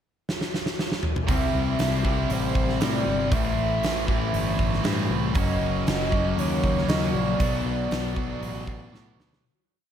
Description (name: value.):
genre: rock, shoegaze and dream pop.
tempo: 118 BPM.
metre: 4/4.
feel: straight.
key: unclear.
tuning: A4 = 442 Hz.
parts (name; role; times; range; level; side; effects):
huge arena drum kit; drums; 0.3-9.4 s; hi-hat, kick drum, snare drum, toms; -27 LUFS; right 1 dB; none.
pure sine lead; melody; 1.3-8.9 s; C5 to E5; -30 LUFS; right 1 dB; chorus, analog delay.
biting overdriven guitar; riff; 1.3-9.4 s; F#2 to F#4; -31 LUFS; right 14 dB; reverse reverb.
thick fuzz guitar; riff; 1.3-9.4 s; F#2 to C4; -27 LUFS; left 6 dB; distortion, lush chorus.
growling fingered electric bass; bass; 1.3-9.4 s; F#1 to A2; -29 LUFS; equal; overdrive.
room: moderate booth ambience, RT60 0.2 s.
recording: none.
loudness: -22 LUFS.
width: side -9 dB against mid.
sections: 0.0-1.3 pickup bar; 1.3-9.4 verse.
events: drum fill 0.3-1.3, 8.9-9.4; fade-out 7.4-9.4.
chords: 0.0 N.C.; 1.3 Am; 5.4 F#; 7.4 Bm.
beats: 0.28 0.78 | 1.29 1.79 2.30 2.81 | 3.32 3.83 4.34 4.85 | 5.36 5.87 6.38 6.89 | 7.40 7.91 8.42 8.93.